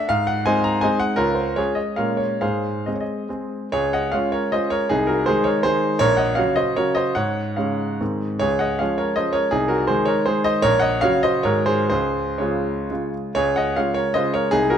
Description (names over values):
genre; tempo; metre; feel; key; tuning
classical, romantic triple-time dance for piano with dotted rhythms; 116-175 BPM; 3/4; rubato; Db major; A4 = 440 Hz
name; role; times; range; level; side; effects
clear grand piano; solo; 0.0-14.8 s; Bb1 to Bb5; -18 LUFS; equal; none
room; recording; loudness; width
moderate recital hall reverb, RT60 1.5 s; close, detailed microphones; -18 LUFS; side -8 dB against mid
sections
0.0-3.7 A section; 3.7-13.4 B section; 13.4-14.8 C section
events
none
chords
0.1 Ab; 1.2 Db; 2.0 Bbm7; 2.4 Ab; 3.7 Db; 4.9 Ab/C; 6.0 Gb/Bb; 7.2 Db/Ab; 8.0 Ab; 8.4 Db; 9.5 Ab/C; 10.6 Gb/Bb; 11.4 Ab7; 11.9 Db